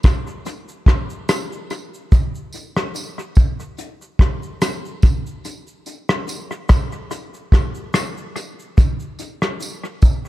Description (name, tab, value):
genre	indie pop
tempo	72 BPM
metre	4/4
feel	swing 55% on 16ths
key	none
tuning	none
part	soft brush drum kit	drums	0.0-10.3 s	hi-hat, kick drum, rim click, shaker	-16 LUFS	equal	analog delay
part	tambourine	percussion	0.0-10.2 s	none	-36 LUFS	right 3 dB	analog delay
room	small room ambience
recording	echo-heavy mix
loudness	-17 LUFS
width	side -16 dB against mid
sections	0.0-10.3 A section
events	none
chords	none